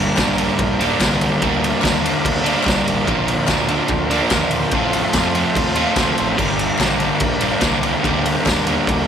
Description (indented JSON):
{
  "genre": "garage rock duo or trio",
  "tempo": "145 BPM",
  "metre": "4/4",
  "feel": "straight",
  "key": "G minor",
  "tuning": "A4 = 442 Hz",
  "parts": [
    { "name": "combo organ", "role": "sustained chords", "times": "0.0-9.1 s", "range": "C4 to Bb4", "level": "-27 LUFS", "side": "left 1 dB", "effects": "none" },
    { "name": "crunchy overdriven guitar", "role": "riff", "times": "0.0-9.1 s", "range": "G2 to F4", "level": "-18 LUFS", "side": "right 1 dB", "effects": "none" },
    { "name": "growling picked electric bass", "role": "bass", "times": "0.0-9.1 s", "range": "G1 to F2", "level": "-27 LUFS", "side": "equal", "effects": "overdrive" },
    { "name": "raw garage drum kit", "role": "drums", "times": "0.2-9.0 s", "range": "crash cymbal, kick drum, ride cymbal, snare drum", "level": "-20 LUFS", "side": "equal", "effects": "none" },
    { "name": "group handclap", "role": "percussion", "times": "0.2-8.6 s", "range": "none", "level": "-29 LUFS", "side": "left 7 dB", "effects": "none" }
  ],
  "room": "light reverb",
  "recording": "none",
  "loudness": "-15 LUFS",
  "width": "side -8 dB against mid",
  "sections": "0.0-9.1 A section",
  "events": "none",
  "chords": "0.0 Gm; 3.1 Bb; 4.7 F/A; 6.4 Gm",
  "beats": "0.18 0.60 1.01 | 1.42 1.84 2.25 2.66 | 3.08 3.49 3.90 4.32 | 4.73 5.15 5.56 5.97 | 6.39 6.80 7.22 7.63 | 8.04 8.46 8.87"
}